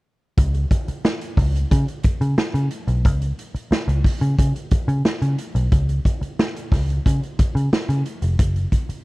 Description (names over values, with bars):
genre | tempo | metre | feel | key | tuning
funk | 90 BPM | 4/4 | straight | Db mixolydian | A4 = 440 Hz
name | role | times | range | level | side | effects
vintage muted picked electric bass | bass | 0.4-8.9 s | F1 to Db3 | -19 LUFS | equal | none
raw garage drum kit | drums | 0.4-9.0 s | hi-hat, kick drum, snare drum | -20 LUFS | equal | none
room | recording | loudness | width
little or no reverb | dry, close 1970s-style studio recording | -18 LUFS | side -22 dB against mid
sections
0.4-9.0 A section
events
none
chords
none